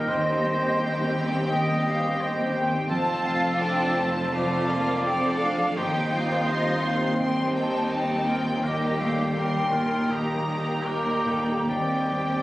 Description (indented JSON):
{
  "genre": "cinematic, emotional film score for orchestra",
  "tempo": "70-87 BPM",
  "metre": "4/4",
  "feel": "rubato",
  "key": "C dorian",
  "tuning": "A4 = 440 Hz",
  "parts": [
    { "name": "rich studio violin section", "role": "melody", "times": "0.0-12.4 s", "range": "F5 to C6", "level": "-36 LUFS", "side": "left 1 dB", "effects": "none" },
    { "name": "mellow oboe", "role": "second line", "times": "0.0-12.4 s", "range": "Eb4 to Eb5", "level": "-29 LUFS", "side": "right 1 dB", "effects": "none" },
    { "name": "rich studio violin section", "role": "second line", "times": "0.0-12.4 s", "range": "Eb4 to Bb4", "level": "-34 LUFS", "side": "left 1 dB", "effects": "none" },
    { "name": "small flute group", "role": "second line", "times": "0.0-12.4 s", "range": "Eb5 to Bb5", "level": "-30 LUFS", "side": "left 1 dB", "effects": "none" },
    { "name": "dark concert grand piano", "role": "accompaniment", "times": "0.0-12.4 s", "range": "Eb2 to Eb5", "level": "-34 LUFS", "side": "equal", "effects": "none" },
    { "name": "rich studio viola section", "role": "accompaniment", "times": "0.0-12.4 s", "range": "G3 to Eb4", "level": "-34 LUFS", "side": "right 2 dB", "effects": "none" },
    { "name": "concert harp", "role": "arpeggios", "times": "0.0-12.4 s", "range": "Eb3 to Eb5", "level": "-36 LUFS", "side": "left 2 dB", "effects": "none" },
    { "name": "clear studio double bass section", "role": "bass", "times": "0.0-12.4 s", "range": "F1 to Eb2", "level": "-31 LUFS", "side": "right 1 dB", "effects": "none" },
    { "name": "rich studio cello section", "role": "bass", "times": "0.0-12.4 s", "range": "Eb2 to F2", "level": "-32 LUFS", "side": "right 1 dB", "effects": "none" },
    { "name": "mellow French horn section", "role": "sustained chords", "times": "0.1-12.4 s", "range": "Bb2 to C4", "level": "-33 LUFS", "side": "left 1 dB", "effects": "none" }
  ],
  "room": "moderate scoring stage reverb, RT60 1.9 s",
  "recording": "recorded on a phone in the room, club reverb, compression",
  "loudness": "-22 LUFS",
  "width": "side -17 dB against mid",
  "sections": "0.0-12.4 A section",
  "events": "none",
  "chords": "0.1 Cm/Eb; 2.9 F; 5.8 Cm/Eb; 8.6 Eb; 11.7 Cm/Eb",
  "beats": "| 0.08 0.80 1.50 2.20 | 2.90 3.60 4.34 5.06 | 5.77 6.48 7.20 7.91 | 8.64 9.36 10.10 10.85 | 11.69"
}